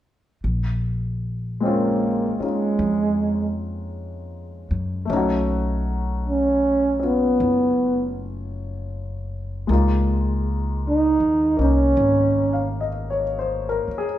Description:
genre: jazz ballad.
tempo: 52 BPM.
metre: 4/4.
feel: swing 66% on 8ths.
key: Bb minor.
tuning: A4 = 440 Hz.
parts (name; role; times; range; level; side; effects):
upright bass; bass; 0.4-13.9 s; F#1 to Gb2; -25 LUFS; equal; none.
warm baby grand piano; accompaniment; 1.6-14.2 s; Ab3 to F5; -26 LUFS; left 2 dB; none.
breathy trombone; melody; 1.7-12.7 s; Ab3 to Eb4; -19 LUFS; right 1 dB; none.
room: moderate large studio reverb, RT60 1.1 s.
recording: heard from further back in the room.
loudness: -19 LUFS.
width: side -12 dB against mid.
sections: 0.4-14.2 A section.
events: trombone solo 0.4-14.2.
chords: 0.4 Bbm9; 5.1 B9; 9.7 Db69.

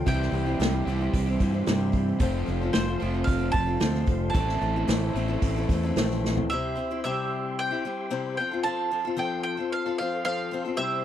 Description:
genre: folk rock and heartland rock.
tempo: 112 BPM.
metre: 4/4.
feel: straight.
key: unclear.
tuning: A4 = 440 Hz.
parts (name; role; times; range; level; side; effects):
bowl-back mandolin; melody; 0.0-11.0 s; C5 to A5; -30 LUFS; right 3 dB; none.
picked acoustic archtop guitar; accompaniment; 0.0-11.0 s; A2 to C5; -31 LUFS; left 6 dB; none.
tonewheel organ; sustained chords; 0.0-11.0 s; G4 to C6; -41 LUFS; equal; slow rotary speaker, chorus vibrato.
crunchy overdriven guitar; riff; 0.0-6.5 s; F2 to F4; -30 LUFS; right 2 dB; none.
fingered electric bass; bass; 0.1-6.4 s; F1 to G2; -28 LUFS; equal; none.
unplugged drum kit; drums; 0.1-6.5 s; hi-hat, kick drum, snare drum, toms; -27 LUFS; equal; none.
room: little or no reverb.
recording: none.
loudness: -24 LUFS.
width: side -10 dB against mid.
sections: 0.0-6.5 A section; 6.5-11.0 B section.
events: drum fill 6.2.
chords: 0.1 C; 2.2 F; 4.3 Am; 6.5 C; 8.4 F.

